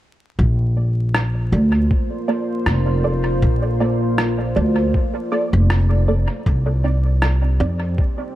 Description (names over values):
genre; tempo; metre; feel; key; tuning
ambient dub; 79 BPM; 4/4; swing 55% on 16ths; unclear; A4 = 439 Hz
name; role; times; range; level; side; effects
deep dark ambient pad; sustained chords; 1.7-8.4 s; Bb3 to Eb5; -25 LUFS; equal; chorus, built-in reverb
upright bass; bass; 0.4-7.9 s; F1 to F2; -17 LUFS; equal; none
electronic kick drum; drums; 0.4-8.2 s; none; -19 LUFS; equal; overdrive
filtered dub chord stab; stabs; 0.8-7.8 s; Bb3 to D5; -26 LUFS; right 2 dB; ensemble chorus, dub echo
electronic rim click; drums; 1.1-7.4 s; none; -26 LUFS; equal; overdrive, dub echo
room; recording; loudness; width
light reverb; echo-heavy mix, vinyl crackle; -16 LUFS; side -14 dB against mid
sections
0.4-8.4 A section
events
none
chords
0.4 Bbmaj7; 6.5 Cmadd9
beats
| 0.39 1.15 1.91 2.67 | 3.43 4.19 4.95 5.71 | 6.46 7.22 7.98